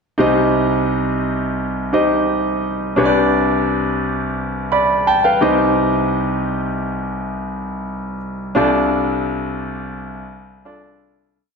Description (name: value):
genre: pop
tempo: 86 BPM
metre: 4/4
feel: straight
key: C dorian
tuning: A4 = 437 Hz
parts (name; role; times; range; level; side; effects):
- clear concert grand piano; solo; 0.2-11.4 s; C2 to B5; -16 LUFS; equal; none
room: wet scoring stage reverb, RT60 1.8 s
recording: none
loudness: -16 LUFS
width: side -5 dB against mid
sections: 0.2-11.3 verse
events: grand piano fill 4.4-5.8; fade-out 8.6-11.3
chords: 0.2 Cm; 3.0 G/C; 5.4 Cm; 8.6 Dm/C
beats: | 0.18 0.88 1.58 2.28 | 2.98 3.67 4.37 5.07 | 5.77 6.46 7.16 7.86 | 8.56 9.26 9.95 10.65